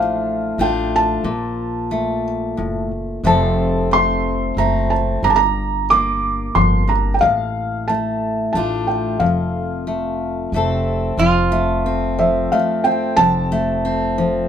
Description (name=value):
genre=acoustic folk duo or small band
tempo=90 BPM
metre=3/4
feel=straight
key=F major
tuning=A4 = 440 Hz
part: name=felt-muted upright piano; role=melody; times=0.0-14.5 s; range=E5 to D6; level=-19 LUFS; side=right 2 dB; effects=none
part: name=fingerpicked steel-string acoustic guitar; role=accompaniment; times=0.0-14.5 s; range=F2 to A4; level=-20 LUFS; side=left 2 dB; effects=none
part: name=upright bass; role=bass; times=0.0-14.5 s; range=F1 to Bb1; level=-24 LUFS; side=equal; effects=none
part: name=lap resonator guitar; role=second line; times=11.2-14.5 s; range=F4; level=-20 LUFS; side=right 5 dB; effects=none
room=moderate studio ambience, RT60 0.5 s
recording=minimal, uncompressed stereo recording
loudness=-16 LUFS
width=side -8 dB against mid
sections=0.0-11.2 A section; 11.2-14.5 B section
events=none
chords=0.0 Dm/A; 1.3 Bb5; 3.2 F; 5.2 Gm7; 7.2 Dm/A; 9.2 F